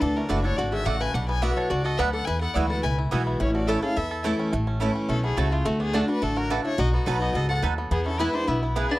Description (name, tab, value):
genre	bluegrass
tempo	213 BPM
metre	4/4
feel	straight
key	A major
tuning	A4 = 436 Hz
part	bluegrass banjo	melody	0.0-9.0 s	A3 to A4	-32 LUFS	right 2 dB	none
part	clear fiddle	melody	0.0-9.0 s	E4 to G#5	-31 LUFS	left 2 dB	none
part	lap resonator guitar	second line	0.0-9.0 s	G#3 to B4	-30 LUFS	left 2 dB	none
part	picked steel-string acoustic guitar	accompaniment	0.0-9.0 s	E2 to F#4	-29 LUFS	equal	none
part	upright bass	bass	0.0-8.8 s	F#1 to E2	-26 LUFS	equal	none
part	mandolin	stabs	0.3-8.9 s	A3 to B5	-29 LUFS	right 7 dB	none
room	light reverb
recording	dry, close 1970s-style studio recording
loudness	-22 LUFS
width	side -17 dB against mid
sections	0.0-4.5 A section; 4.5-9.0 A section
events	none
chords	0.0 D; 1.1 Bm; 2.3 Eadd9; 3.4 A; 5.7 D; 6.8 B; 7.9 E